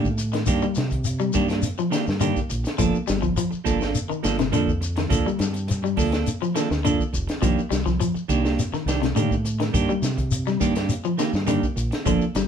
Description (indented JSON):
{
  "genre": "afrobeat",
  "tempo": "104 BPM",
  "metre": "4/4",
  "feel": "straight",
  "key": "C dorian",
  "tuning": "A4 = 438 Hz",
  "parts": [
    { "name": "electric guitar at the edge of break-up", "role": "arpeggios", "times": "0.0-12.5 s", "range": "C3 to G3", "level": "-26 LUFS", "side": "left 5 dB", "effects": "none" },
    { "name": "semi-hollow electric guitar", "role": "stabs", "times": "0.0-12.4 s", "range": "Eb3 to A4", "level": "-25 LUFS", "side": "right 5 dB", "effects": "none" },
    { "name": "fingered electric bass", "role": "bass", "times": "0.0-12.5 s", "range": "F1 to C3", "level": "-26 LUFS", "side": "equal", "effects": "none" },
    { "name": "compact cocktail drum kit", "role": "drums", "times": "0.0-12.5 s", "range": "hi-hat, kick drum, snare drum", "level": "-28 LUFS", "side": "equal", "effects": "none" },
    { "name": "shekere", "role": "percussion", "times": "0.0-12.5 s", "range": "none", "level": "-29 LUFS", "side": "left 4 dB", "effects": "none" }
  ],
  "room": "wet studio reverb, RT60 0.5 s",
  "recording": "band playing live in one room",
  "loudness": "-20 LUFS",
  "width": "side -8 dB against mid",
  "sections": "0.0-12.5 A section",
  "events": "none",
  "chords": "0.0 Cm9; 2.8 Gm9; 7.4 Cm9"
}